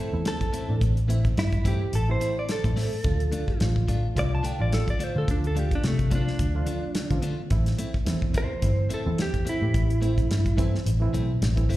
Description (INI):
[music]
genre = straight-eighth soul blues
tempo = 108 BPM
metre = 4/4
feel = swing 56% on 16ths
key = A minor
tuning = A4 = 440 Hz
[part]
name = direct-recorded clean electric guitar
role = melody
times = 0.0-10.6 s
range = A3 to A5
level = -31 LUFS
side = right 1 dB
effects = slapback echo, digital delay
[part]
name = direct-recorded clean electric guitar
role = stabs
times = 0.0-11.8 s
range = A2 to F4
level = -35 LUFS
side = left 4 dB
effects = tremolo, slapback echo, digital delay
[part]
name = barky reed electric piano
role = accompaniment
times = 0.1-11.8 s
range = E3 to G4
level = -33 LUFS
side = right 5 dB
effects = overdrive, fast tremolo, slapback echo
[part]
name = vintage muted fingered electric bass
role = bass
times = 0.1-11.8 s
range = G1 to D3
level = -24 LUFS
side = equal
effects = none
[part]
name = warm soul drum kit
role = drums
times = 0.3-11.8 s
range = hi-hat, kick drum, snare drum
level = -28 LUFS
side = equal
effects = none
[sound]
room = small room ambience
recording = live gig heard through the venue's PA, recital hall reverb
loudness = -22 LUFS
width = side -16 dB against mid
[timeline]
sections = 0.0-11.8 A section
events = clean electric guitar solo 0.0-11.8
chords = 0.0 Am; 3.0 Dm; 7.5 Am